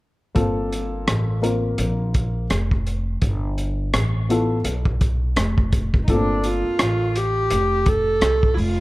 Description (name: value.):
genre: hip hop, jazz-hop.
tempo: 84 BPM.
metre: 4/4.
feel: swing 58% on 16ths.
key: G minor.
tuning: A4 = 439 Hz.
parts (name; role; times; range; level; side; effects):
dark upright piano; accompaniment; 0.3-7.1 s; A3 to Bb4; -24 LUFS; left 2 dB; none.
upright bass; bass; 0.4-8.8 s; F1 to C2; -23 LUFS; equal; none.
crunchy breakbeat drum kit; drums; 0.4-8.8 s; hi-hat, kick drum, rim click; -22 LUFS; equal; none.
warm viola; melody; 6.0-8.8 s; D4 to A4; -21 LUFS; right 1 dB; none.
room: light reverb, small room ambience.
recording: dark, warm production.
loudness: -18 LUFS.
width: side -19 dB against mid.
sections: 0.4-6.1 A section; 6.1-8.8 B section.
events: none.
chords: 0.4 Gm11; 3.2 G9; 6.1 Gm11.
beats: | 0.36 1.08 1.79 2.51 | 3.22 3.93 4.65 5.36 | 6.08 6.79 7.51 8.22.